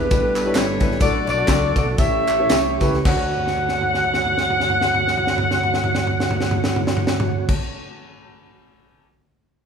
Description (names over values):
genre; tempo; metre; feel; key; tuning
uptempo gospel; 105-137 BPM; 4/4; swing 56% on 8ths; D major; A4 = 440 Hz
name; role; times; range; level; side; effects
warm saxophone section; melody; 0.0-7.5 s; D4 to F#5; -21 LUFS; left 1 dB; none
clear upright piano; accompaniment; 0.0-7.6 s; D2 to D5; -28 LUFS; left 2 dB; none
percussive tonewheel organ; sustained chords; 0.0-7.5 s; D3 to C#5; -26 LUFS; right 5 dB; slow rotary speaker
fingered electric bass; bass; 0.0-7.5 s; G1 to D2; -28 LUFS; equal; none
crisp fusion drum kit; drums; 0.1-9.1 s; crash cymbal, kick drum, ride cymbal, snare drum, toms; -22 LUFS; equal; none
tambourine and handclaps; percussion; 0.1-7.5 s; none; -32 LUFS; right 2 dB; none
room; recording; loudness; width
moderate plate reverb, RT60 2.3 s; rough home demo mix; -17 LUFS; side -6 dB against mid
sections
0.0-3.1 A section; 3.1-7.6 B section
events
slowing down 0.0-3.1; drum fill 3.3-7.5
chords
0.1 A9sus4; 1.0 D/A; 2.0 A7; 3.1 Dmaj7